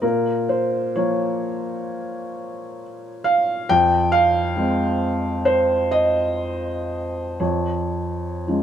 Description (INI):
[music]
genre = neoclassical minimalist piano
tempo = 57-69 BPM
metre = 4/4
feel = rubato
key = unclear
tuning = A4 = 439 Hz
[part]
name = felt-muted upright piano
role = solo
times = 0.0-8.6 s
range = F2 to G5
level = -19 LUFS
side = equal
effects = none
[sound]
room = light reverb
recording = band playing live in one room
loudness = -19 LUFS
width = side -9 dB against mid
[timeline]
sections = 0.0-8.6 A section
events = none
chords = 0.0 Bbm; 3.7 Fm; 7.4 Db/F